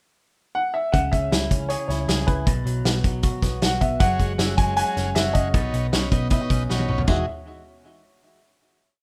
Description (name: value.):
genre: jangly indie pop.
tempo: 156 BPM.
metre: 4/4.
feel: straight.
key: E major.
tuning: A4 = 440 Hz.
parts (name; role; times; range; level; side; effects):
warm upright piano; melody; 0.5-7.3 s; B4 to G#5; -28 LUFS; equal; none.
direct-recorded clean electric guitar; arpeggios; 0.9-7.2 s; B2 to G#4; -31 LUFS; equal; lush chorus.
vintage muted picked electric bass; bass; 0.9-7.3 s; E1 to C#2; -29 LUFS; equal; none.
loose indie drum kit; drums; 0.9-7.2 s; hi-hat, kick drum, snare drum, splash cymbal, toms; -25 LUFS; equal; none.
combo organ; accompaniment; 4.0-7.3 s; D#4 to E5; -35 LUFS; equal; none.
room: moderate studio reverb, RT60 0.6 s.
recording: rough home demo mix.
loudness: -22 LUFS.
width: mono.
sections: 0.0-0.9 pickup bar; 0.9-7.1 pre-chorus; 7.1-8.6 final chord.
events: drum fill 6.7-7.1.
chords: 0.0 N.C.; 0.9 C#m; 2.5 B5; 4.0 F#sus2; 5.5 Badd9; 7.1 Emaj9.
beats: 0.17 0.56 | 0.94 1.32 1.71 2.09 | 2.47 2.86 3.24 3.62 | 4.01 4.39 4.78 5.16 | 5.54 5.93 6.31 6.69 | 7.08.